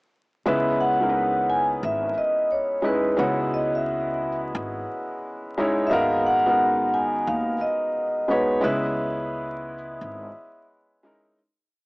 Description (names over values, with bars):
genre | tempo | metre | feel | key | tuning
lo-fi hip hop | 88 BPM | 4/4 | swing 60% on 16ths | C# dorian | A4 = 439 Hz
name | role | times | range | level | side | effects
vibraphone with medium mallets | melody | 0.5-10.6 s | B4 to G#5 | -24 LUFS | equal | low-pass filter, cassette tape, analog delay
felt-muted upright piano | accompaniment | 0.5-11.4 s | G#3 to C#5 | -25 LUFS | equal | cassette tape, low-pass filter
upright bass | bass | 0.5-10.3 s | G#1 to D#2 | -34 LUFS | equal | none
room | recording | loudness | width
moderate booth ambience, RT60 0.2 s | home recording on cassette, vinyl crackle, small speaker sound | -21 LUFS | side -31 dB against mid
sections
0.5-11.4 A section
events
fade-out 8.6-11.4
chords
0.5 C#m9; 5.9 G#m9; 8.6 C#m7